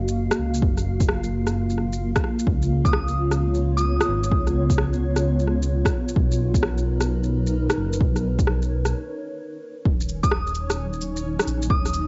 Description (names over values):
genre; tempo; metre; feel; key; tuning
future garage; 130 BPM; 4/4; swing 65% on 16ths; Eb minor; A4 = 440 Hz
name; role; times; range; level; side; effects
granular cloud pad; sustained chords; 0.0-12.1 s; Gb3 to F5; -30 LUFS; equal; built-in reverb, sidechain pumping, cassette tape
dark detuned saw bass; bass; 0.0-12.1 s; Eb1 to Db2; -26 LUFS; equal; tube saturation, sidechain pumping
electronic shaker, rim click and cabasa; drums; 0.1-12.1 s; none; -29 LUFS; equal; overdrive, studio reverb, cassette tape
electronic kick drum; drums; 0.6-11.8 s; none; -25 LUFS; equal; overdrive, studio reverb, cassette tape
soft synth bell; melody; 2.8-4.4, 10.2-12.1 s; Eb6; -31 LUFS; equal; chorus, vintage 12-bit sampler grit, tape echo
backwards swelling texture; texture; 10.5-12.1 s; Db4 to Db5; -41 LUFS; equal; built-in reverb, cassette tape
room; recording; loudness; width
little or no reverb; home recording on cassette, nothing above 7.7 kHz; -23 LUFS; mono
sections
0.0-9.9 A section; 9.9-12.1 A section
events
break 8.9-9.9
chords
0.0 Gbmaj7; 2.5 Db7; 6.2 Bmaj7; 9.9 Ebm7